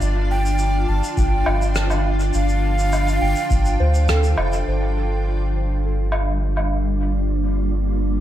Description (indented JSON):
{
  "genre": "ambient dub",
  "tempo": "103 BPM",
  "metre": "4/4",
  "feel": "straight",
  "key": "G minor",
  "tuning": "A4 = 441 Hz",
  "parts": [
    { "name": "granular cloud pad", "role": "sustained chords", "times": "0.0-8.2 s", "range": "G3 to G5", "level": "-27 LUFS", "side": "left 1 dB", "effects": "built-in reverb" },
    { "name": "soft synth bell", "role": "arpeggios", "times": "0.0-8.2 s", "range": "D4 to G5", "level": "-31 LUFS", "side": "right 3 dB", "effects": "chorus, phaser, dub echo" },
    { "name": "soft dub sub bass", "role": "bass", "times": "0.0-8.2 s", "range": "F1 to D2", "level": "-20 LUFS", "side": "equal", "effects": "none" },
    { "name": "shaker, woodblock and rim click", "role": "drums", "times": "0.0-6.7 s", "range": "none", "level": "-27 LUFS", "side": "equal", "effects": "dub echo" },
    { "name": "wind-like tuned noise texture", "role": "texture", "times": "0.0-8.2 s", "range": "D4 to F4", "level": "-33 LUFS", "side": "right 1 dB", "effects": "built-in reverb" },
    { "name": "breathy mellow silver concert flute", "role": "melody", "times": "0.3-4.0 s", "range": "F5 to A5", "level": "-28 LUFS", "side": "right 2 dB", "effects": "dub echo" },
    { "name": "electronic kick drum", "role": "drums", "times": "1.2-3.6 s", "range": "none", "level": "-22 LUFS", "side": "equal", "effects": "none" }
  ],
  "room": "light reverb, small room ambience",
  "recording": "none",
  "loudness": "-18 LUFS",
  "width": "side -12 dB against mid",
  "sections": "0.0-4.7 A section; 4.7-8.2 B section",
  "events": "filter sweep on synth bell 0.0-4.7; filter sweep on ambient pad 4.7-8.2",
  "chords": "0.0 Dm/G; 4.7 Gm9"
}